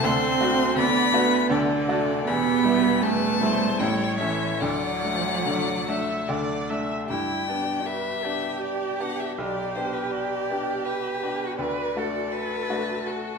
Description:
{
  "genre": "classical, slow romantic movement for piano quartet",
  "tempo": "70-84 BPM",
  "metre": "3/4",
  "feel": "rubato",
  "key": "G major",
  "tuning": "A4 = 439 Hz",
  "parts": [
    { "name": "rich violin", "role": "melody", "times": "0.0-13.4 s", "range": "A4 to C6", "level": "-28 LUFS", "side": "left 8 dB", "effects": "none" },
    { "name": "warm cello", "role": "second line", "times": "0.0-13.4 s", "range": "D3 to B4", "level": "-26 LUFS", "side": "right 6 dB", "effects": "none" },
    { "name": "bright baby grand piano", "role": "accompaniment", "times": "0.0-13.4 s", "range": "E1 to G4", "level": "-28 LUFS", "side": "left 1 dB", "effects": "none" },
    { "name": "rich viola", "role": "accompaniment", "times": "0.0-13.4 s", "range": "F#4 to E5", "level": "-32 LUFS", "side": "right 2 dB", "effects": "none" }
  ],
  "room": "wet recital hall reverb, RT60 1.3 s",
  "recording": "minimal, uncompressed stereo recording",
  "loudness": "-22 LUFS",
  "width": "side -5 dB against mid",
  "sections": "0.0-7.1 A section; 7.1-13.4 B section",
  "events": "none",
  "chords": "0.1 D7; 2.3 Em; 3.8 A7; 4.6 D; 7.1 G; 9.4 G/B; 11.6 D"
}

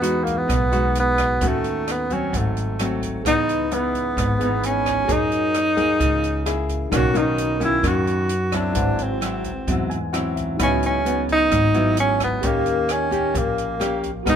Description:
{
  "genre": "bossa nova",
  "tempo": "131 BPM",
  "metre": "4/4",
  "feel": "straight",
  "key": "G# minor",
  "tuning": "A4 = 442 Hz",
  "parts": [
    { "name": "breathy tenor saxophone", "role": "melody", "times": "0.0-14.4 s", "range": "A3 to F#4", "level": "-21 LUFS", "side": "right 1 dB", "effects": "none" },
    { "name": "nylon-string guitar", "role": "accompaniment", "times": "0.0-14.4 s", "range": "F#2 to A#4", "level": "-25 LUFS", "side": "left 2 dB", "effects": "none" },
    { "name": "upright bass", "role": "bass", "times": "0.0-14.4 s", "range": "G#1 to F#2", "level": "-26 LUFS", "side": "equal", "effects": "none" },
    { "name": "open jazz drum kit", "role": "drums", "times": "0.0-14.4 s", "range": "hi-hat, kick drum, rim click", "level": "-28 LUFS", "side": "equal", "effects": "none" },
    { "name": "tine electric piano", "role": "accompaniment", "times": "3.2-14.4 s", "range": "D#4 to G#5", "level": "-30 LUFS", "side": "equal", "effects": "medium stereo tremolo" }
  ],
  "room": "light reverb",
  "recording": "minimal, uncompressed stereo recording",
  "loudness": "-18 LUFS",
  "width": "side -8 dB against mid",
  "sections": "0.0-14.4 A section",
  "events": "tine electric piano fill 9.7-10.6",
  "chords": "0.0 Emaj9; 1.4 D#m7b5; 2.3 G#7b9; 3.2 C#m9; 5.1 F#9; 6.9 Bmaj9; 8.8 G#7alt; 10.6 C#m11; 12.4 D#7"
}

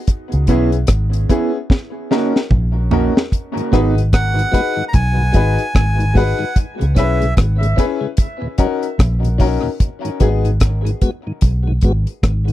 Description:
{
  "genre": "dub reggae",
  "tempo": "74 BPM",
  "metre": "4/4",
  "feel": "swing 60% on 16ths",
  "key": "G# minor",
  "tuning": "A4 = 442 Hz",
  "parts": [
    { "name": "deep reggae drum kit", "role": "drums", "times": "0.1-12.5 s", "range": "hi-hat, kick drum, rim click, snare drum, toms", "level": "-14 LUFS", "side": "equal", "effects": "none" },
    { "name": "vintage muted fingered electric bass", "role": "bass", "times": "0.3-12.5 s", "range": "G#1 to C#2", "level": "-16 LUFS", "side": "equal", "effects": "none" },
    { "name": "mellow electric guitar", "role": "accompaniment", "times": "0.5-3.9 s", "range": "A#3 to G#4", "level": "-21 LUFS", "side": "right 7 dB", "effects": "tape echo" },
    { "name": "bright upright piano", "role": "stabs", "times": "0.5-10.5 s", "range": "B3 to B4", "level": "-23 LUFS", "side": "left 6 dB", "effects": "tape echo" },
    { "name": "mellow tonewheel organ", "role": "accompaniment", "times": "3.6-12.5 s", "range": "D#2 to F#4", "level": "-25 LUFS", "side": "left 1 dB", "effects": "slow rotary speaker, tape echo" },
    { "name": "melodica", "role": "melody", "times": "4.1-7.3 s", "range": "E5 to A#5", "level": "-22 LUFS", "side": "right 1 dB", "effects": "tape echo" }
  ],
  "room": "little or no reverb",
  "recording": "dry, close 1970s-style studio recording",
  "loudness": "-14 LUFS",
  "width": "side -14 dB against mid",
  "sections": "0.0-12.5 A section",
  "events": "break 0.0-3.3; drum fill 1.7-3.3",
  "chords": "0.1 C#m7; 1.7 D#m7; 3.3 G#m7; 6.6 C#m7; 8.2 D#m7; 9.8 G#m7"
}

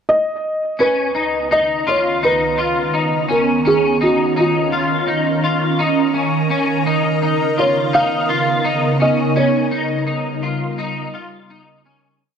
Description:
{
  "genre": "dream pop",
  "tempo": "84 BPM",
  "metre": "4/4",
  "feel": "straight",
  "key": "unclear",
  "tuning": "A4 = 440 Hz",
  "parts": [
    { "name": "felt-muted upright piano", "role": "melody", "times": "0.1-10.8 s", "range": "F4 to F5", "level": "-18 LUFS", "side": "right 1 dB", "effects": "tape echo" },
    { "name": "ethereal airy pad", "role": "sustained chords", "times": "1.8-12.2 s", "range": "Db2 to Bb5", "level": "-20 LUFS", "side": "right 2 dB", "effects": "ensemble chorus, built-in reverb, phaser" },
    { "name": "electric guitar at the edge of break-up", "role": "arpeggios", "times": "0.8-12.2 s", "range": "Db4 to F4", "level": "-19 LUFS", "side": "left 3 dB", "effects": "ensemble chorus, tape echo" }
  ],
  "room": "moderate lush hall reverb, RT60 2.7 s",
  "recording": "dry, gritty hardware recording",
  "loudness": "-15 LUFS",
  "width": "side -7 dB against mid",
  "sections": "0.0-0.8 pickup bar; 0.8-12.2 verse",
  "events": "fade-out 9.4-12.2",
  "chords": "0.0 N.C.; 0.8 Cbmaj9/Db; 3.6 Db69; 6.5 Cbmaj9/Db; 9.4 Eb7"
}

